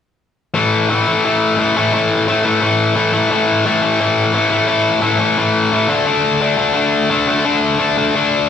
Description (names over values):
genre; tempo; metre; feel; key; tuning
punk; 174 BPM; 4/4; straight; unclear; A4 = 437 Hz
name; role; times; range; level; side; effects
distorted electric guitar; riff; 0.5-8.5 s; A2 to D4; -12 LUFS; left 2 dB; overdrive
room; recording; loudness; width
wet large studio reverb, RT60 1.5 s; band playing live in one room; -13 LUFS; side -8 dB against mid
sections
0.6-8.5 A section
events
none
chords
0.6 A5; 5.9 D5